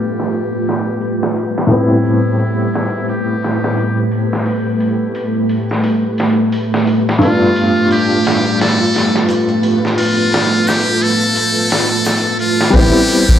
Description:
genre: trip hop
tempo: 87 BPM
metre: 4/4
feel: swing 57% on 16ths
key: A minor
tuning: A4 = 442 Hz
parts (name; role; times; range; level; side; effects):
- trumpet with metal mute; melody; 0.0-13.4 s; E4 to A4; -19 LUFS; left 1 dB; tape echo
- felt-muted upright piano; accompaniment; 0.0-13.4 s; G2 to F4; -17 LUFS; left 1 dB; tremolo, tape echo
- string machine, cellos; sustained chords; 0.0-13.4 s; A3 to A5; -16 LUFS; right 1 dB; ensemble chorus
- trip hop sampler-style drum kit; drums; 0.2-13.4 s; crash cymbal, hi-hat, kick drum, snare drum; -21 LUFS; equal; high-pass filter on snare, high-pass filter on hats, high-pass filter on kick, high-pass filter on cymbals
- egg shaker and triangle; percussion; 2.4-12.2 s; none; -36 LUFS; left 4 dB; none
- soft 808-style bass; bass; 12.7-13.4 s; A1; -10 LUFS; equal; none
room: light reverb, small room ambience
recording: played on a big sound system in a bare room, stone room reverb, low-pass filter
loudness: -12 LUFS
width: side -10 dB against mid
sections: 0.0-12.7 A section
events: filter sweep on string machine 0.0-12.7; filter sweep 0.0-12.7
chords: 0.0 G9; 1.7 Am9; 7.2 G9; 12.7 Am9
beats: 0.32 1.01 | 1.70 2.39 3.08 3.77 | 4.46 5.15 5.84 6.53 | 7.22 7.91 8.60 9.29 | 9.98 10.67 11.36 12.05 | 12.74

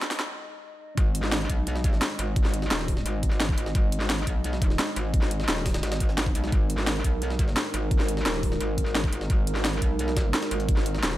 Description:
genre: dark technical drum and bass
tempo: 173 BPM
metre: 4/4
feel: straight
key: G# minor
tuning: A4 = 437 Hz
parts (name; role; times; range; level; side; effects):
- dark analog pad; sustained chords; 0.0-11.2 s; G#3 to D#5; -33 LUFS; right 1 dB; wide subtle chorus, sidechain pumping
- drum and bass drum kit; drums; 0.0-11.1 s; hi-hat, snare drum; -29 LUFS; equal; overdrive
- metallic wobble bass; bass; 1.0-11.2 s; D#1 to B1; -28 LUFS; equal; chorus, tube saturation
- electronic kick drum; drums; 1.0-10.8 s; none; -24 LUFS; equal; overdrive
- jungle sampler-style drum kit; drums; 1.0-11.2 s; hi-hat, snare drum; -37 LUFS; equal; none
room: light reverb, digital ambience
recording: high-pass filter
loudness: -23 LUFS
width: side -15 dB against mid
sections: 1.0-11.2 A section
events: drum fill 0.0; break 0.3-1.0; drop 1.0-11.2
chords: 0.0 G#5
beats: 0.28 0.63 | 0.97 1.32 1.67 2.02 | 2.36 2.71 3.06 3.40 | 3.75 4.10 4.44 4.79 | 5.14 5.48 5.83 6.18 | 6.52 6.87 7.22 7.57 | 7.91 8.26 8.61 8.95 | 9.30 9.65 9.99 10.34 | 10.69 11.03

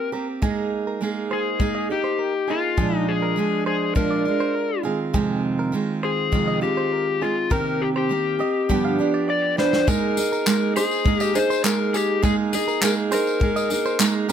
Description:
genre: acoustic pop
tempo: 102 BPM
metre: 4/4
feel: straight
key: unclear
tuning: A4 = 440 Hz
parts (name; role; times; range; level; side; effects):
- overdriven slide guitar; melody; 0.0-14.0 s; F4 to D5; -23 LUFS; left 8 dB; none
- picked steel-string acoustic guitar; accompaniment; 0.0-14.3 s; F2 to Ab4; -23 LUFS; right 5 dB; none
- direct-recorded clean electric guitar; arpeggios; 0.1-14.3 s; Ab4 to F5; -31 LUFS; right 6 dB; none
- natural country drum kit; drums; 0.4-14.3 s; handclaps, kick drum, snare drum, tambourine; -24 LUFS; left 1 dB; none
- tambourine; percussion; 9.9-14.3 s; none; -32 LUFS; left 6 dB; none
room: light reverb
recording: close, detailed microphones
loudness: -19 LUFS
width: side -9 dB against mid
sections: 0.0-9.9 A section; 9.9-14.3 B section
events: drum fill 8.7-9.9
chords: 0.4 Absus2; 2.8 Bb7; 4.8 Fm7; 7.5 Cm7; 8.7 G7; 9.9 Absus2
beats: | 0.43 1.01 1.60 2.19 | 2.78 3.37 3.96 4.55 | 5.14 5.73 6.33 6.92 | 7.51 8.10 8.69 9.28 | 9.88 10.47 11.06 11.64 | 12.23 12.82 13.41 14.00

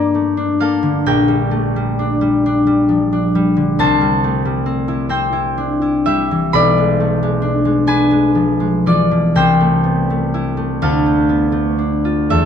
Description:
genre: classical, solo harp piece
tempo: 38-46 BPM (dotted quarters)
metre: 6/8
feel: rubato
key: unclear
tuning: A4 = 443 Hz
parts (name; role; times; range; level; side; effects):
- concert harp; solo; 0.0-12.5 s; Bb1 to C6; -13 LUFS; left 1 dB; none
room: moderate stone room reverb, RT60 1.0 s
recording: dark, warm production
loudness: -13 LUFS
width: side -8 dB against mid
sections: 0.0-12.5 A section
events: none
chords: 0.0 Gm; 1.1 Gm/Bb; 3.8 C; 6.5 E7/B; 9.4 Am/C; 10.8 Dm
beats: | 1.07 2.44 | 3.77 5.08 | 6.53 7.88 | 9.37 10.81 | 12.32

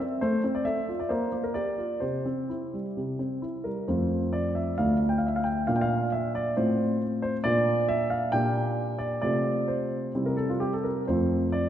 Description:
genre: classical-period piano sonatina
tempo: 133 BPM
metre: 4/4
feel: rubato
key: F major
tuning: A4 = 442 Hz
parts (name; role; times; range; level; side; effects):
- warm grand piano; solo; 0.0-11.7 s; D2 to G5; -25 LUFS; equal; none
room: wet concert hall reverb, RT60 2.0 s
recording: none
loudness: -25 LUFS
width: side -10 dB against mid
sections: 0.0-3.9 A section; 3.9-11.7 B section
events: none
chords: 0.2 F/A; 1.1 Gm7/Bb; 2.0 C; 3.9 F; 4.8 Dm; 5.7 Bb; 6.6 F/A; 7.5 Bb; 8.3 Gm/Bb; 9.2 F/C; 10.2 C; 11.1 F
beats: | 0.21 0.65 1.10 1.55 | 2.02 2.50 2.96 3.42 | 3.89 4.34 4.79 5.24 | 5.68 6.13 6.57 7.01 | 7.45 7.89 8.33 8.77 | 9.23 9.69 10.15 10.62 | 11.08 11.54

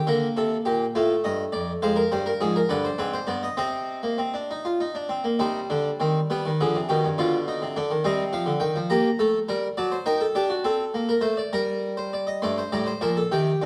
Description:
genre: classical, baroque-style 4-part fugue for harpsichord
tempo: 68 BPM (dotted quarters)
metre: 6/8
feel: straight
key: C minor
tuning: A4 = 439 Hz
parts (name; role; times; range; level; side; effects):
- harpsichord; solo; 0.0-13.7 s; F2 to C6; -25 LUFS; equal; none
room: moderate recital hall reverb, RT60 1.4 s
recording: dark, warm production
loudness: -25 LUFS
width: mono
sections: 0.0-5.4 A section; 5.4-12.4 B section; 12.4-13.7 A section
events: none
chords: 0.1 Gm; 1.0 F; 1.8 Fmadd9; 2.7 G; 3.6 Cm; 6.3 G; 7.2 Bdim; 8.0 Cm; 8.9 Gm; 9.8 D/F#; 10.6 D5; 11.5 Gm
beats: | 0.09 0.96 | 1.83 2.71 | 3.59 4.50 | 5.41 6.30 | 7.18 8.04 | 8.90 9.77 | 10.64 11.53 | 12.42 13.31

